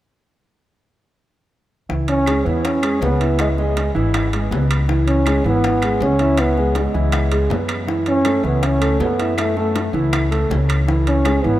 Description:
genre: Afro-Cuban jazz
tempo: 160 BPM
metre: 4/4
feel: straight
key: C# minor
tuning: A4 = 439 Hz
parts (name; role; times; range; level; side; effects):
- warm grand piano; accompaniment; 1.9-11.6 s; E3 to E5; -22 LUFS; right 1 dB; none
- upright bass; bass; 1.9-11.6 s; G#1 to F#2; -20 LUFS; equal; none
- bongos; percussion; 1.9-11.6 s; none; -30 LUFS; left 6 dB; none
- breathy trombone; melody; 2.1-11.6 s; G#3 to C#4; -20 LUFS; equal; none
- timbales; percussion; 2.1-11.4 s; none; -28 LUFS; right 4 dB; none
- claves; percussion; 2.3-11.4 s; none; -34 LUFS; equal; none
room: moderate cathedral reverb, RT60 6.2 s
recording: in a vast, echoing space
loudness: -15 LUFS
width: side -14 dB against mid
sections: 1.9-11.6 A section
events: none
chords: 1.9 C#m7; 7.9 F#m7; 10.9 C#m7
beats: | 1.90 2.27 2.64 3.02 | 3.39 3.76 4.14 4.51 | 4.89 5.26 5.63 6.01 | 6.38 6.76 7.13 7.50 | 7.88 8.25 8.63 9.00 | 9.38 9.75 10.13 10.50 | 10.88 11.25

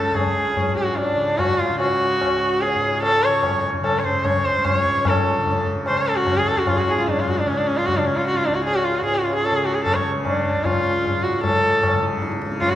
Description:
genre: indian classical, Hindustani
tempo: 149 BPM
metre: 4/4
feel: straight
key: C# raga bhairav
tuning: A4 = 440 Hz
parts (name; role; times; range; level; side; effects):
- rich sarangi; melody; 0.0-12.8 s; C#4 to C#5; -20 LUFS; equal; none
- tanpura; drone; 0.0-12.8 s; C#2 to C#3; -28 LUFS; equal; none
- tabla; percussion; 0.2-12.8 s; none; -24 LUFS; left 2 dB; none
room: wet recital hall reverb, RT60 1.5 s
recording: none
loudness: -18 LUFS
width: side -12 dB against mid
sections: 0.0-11.4 A section; 11.4-12.8 B section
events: speeding up 0.0-12.8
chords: none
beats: | 0.16 0.57 0.98 1.39 | 1.80 2.21 2.62 3.03 | 3.44 3.84 4.25 4.65 | 5.06 5.46 5.86 6.27 | 6.67 7.07 7.47 7.87 | 8.27 8.67 9.07 9.46 | 9.86 10.26 10.65 11.05 | 11.44 11.83 12.23 12.62

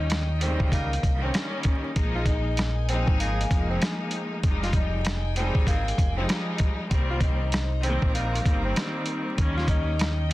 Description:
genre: hip hop, boom-bap hip-hop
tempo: 97 BPM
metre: 4/4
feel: swing 62% on 16ths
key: F minor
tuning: A4 = 440 Hz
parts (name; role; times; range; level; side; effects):
- mellow tenor saxophone; melody; 0.0-10.3 s; Bb3 to F4; -33 LUFS; left 1 dB; high-pass filter, low-pass filter, tape echo
- clear studio string section; accompaniment; 0.0-10.3 s; Db3 to Eb4; -30 LUFS; left 1 dB; cassette tape, high-pass filter, low-pass filter
- warm studio string section; sustained chords; 0.0-10.3 s; Eb4 to Bb5; -39 LUFS; equal; high-pass filter, low-pass filter
- deep dub fingered electric bass; bass; 0.0-10.3 s; F1 to Eb2; -27 LUFS; equal; none
- boom bap sampler-style drum kit; drums; 0.1-10.3 s; hi-hat, kick drum, rim click, snare drum; -25 LUFS; equal; vintage 12-bit sampler grit
- clear horn section; stabs; 0.7-8.4 s; Eb3 to Bb4; -39 LUFS; right 1 dB; high-pass filter, low-pass filter, tape echo
room: light reverb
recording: dense, heavily limited modern master, vinyl crackle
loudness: -23 LUFS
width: side -17 dB against mid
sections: 0.0-10.3 A section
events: none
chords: 0.0 Eb7; 2.0 Bb7sus4; 4.4 Fm9; 6.9 Cm7; 9.4 Eb7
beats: 0.10 0.72 1.34 | 1.96 2.58 3.20 3.82 | 4.43 5.05 5.67 6.29 | 6.91 7.53 8.15 8.76 | 9.38 10.00

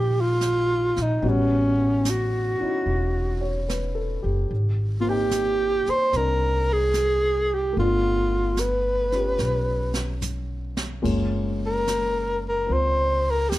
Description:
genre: jazz ballad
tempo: 73 BPM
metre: 4/4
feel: swing 68% on 8ths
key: unclear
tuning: A4 = 442 Hz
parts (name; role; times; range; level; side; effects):
- breathy alto saxophone; melody; 0.0-13.6 s; C#4 to C5; -22 LUFS; equal; none
- dark grand piano; accompaniment; 0.0-13.6 s; Eb3 to G5; -30 LUFS; left 2 dB; none
- upright bass; bass; 0.0-13.6 s; E1 to Eb2; -26 LUFS; equal; none
- jazz brush drum kit; drums; 0.4-13.6 s; brushed snare drum, hi-hat, kick drum, ride cymbal, snare drum, toms; -34 LUFS; right 2 dB; none
room: little or no reverb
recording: lossy compression artefacts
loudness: -21 LUFS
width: side -16 dB against mid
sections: 0.0-13.6 A section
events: drum fill 9.4-11.0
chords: 0.0 Ebmaj7; 1.2 A13; 4.5 Abmaj9; 7.8 G9; 11.0 Gbmaj9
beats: 0.42 | 1.24 2.06 2.88 3.69 | 4.51 5.32 6.13 6.95 | 7.76 8.57 9.39 10.21 | 11.04 11.87 12.69 13.51

